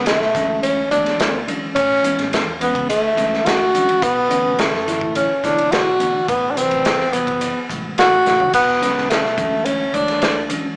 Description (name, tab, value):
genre	electric jazz fusion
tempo	106 BPM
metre	4/4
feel	straight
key	unclear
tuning	A4 = 441 Hz
part	breathy tenor saxophone	melody	0.0-10.5 s	A3 to F#4	-16 LUFS	equal	tape echo
part	bell-like tine electric piano	accompaniment	0.0-10.8 s	C3 to C#5	-26 LUFS	equal	fast stereo tremolo
part	fingered electric bass	bass	0.0-10.7 s	E1 to D3	-32 LUFS	equal	none
part	modern studio drum kit	drums	0.1-10.6 s	crash cymbal, hi-hat, kick drum, ride cymbal, snare drum, toms	-21 LUFS	equal	none
room	moderate large studio reverb, RT60 0.9 s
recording	band playing live in one room, small speaker sound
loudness	-15 LUFS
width	side -33 dB against mid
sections	0.0-10.8 A section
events	drum fill 8.3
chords	0.4 Dmaj9#11; 1.8 Amaj9; 2.9 Dmaj9#11; 4.0 Bm11; 6.3 Am6; 8.5 E13; 9.4 Dmaj9#11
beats	0.07 0.64 1.20 | 1.77 2.33 2.90 3.46 | 4.03 4.59 5.15 5.72 | 6.28 6.84 7.41 7.97 | 8.54 9.10 9.66 10.22